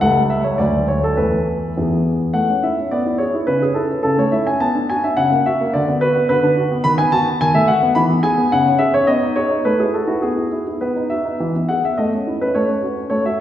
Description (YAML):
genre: classical-period piano sonatina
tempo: 106 BPM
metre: 2/4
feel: straight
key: A major, E major from 6.9 s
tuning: A4 = 440 Hz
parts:
  - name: warm grand piano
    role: solo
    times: 0.0-13.4 s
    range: C#2 to B5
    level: -15 LUFS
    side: equal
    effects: none
room: wet recital hall reverb, RT60 1.7 s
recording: recorded in a church or concert hall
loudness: -15 LUFS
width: side -11 dB against mid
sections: 0.0-2.4 A section; 2.4-11.4 B section; 11.4-13.4 C section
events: none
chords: 0.0 A7/C#; 0.6 D; 1.2 Esus4; 1.8 E; 2.4 A; 2.9 E7/B; 3.5 A/C#; 4.6 Bm; 5.2 F#7/C#; 5.7 Bm/D; 6.9 B7/D#; 8.0 E; 8.5 C#5; 9.1 G#m/B; 9.6 F#m7/A; 10.2 E/B; 10.8 B; 11.4 E; 12.0 A; 12.5 F#m/A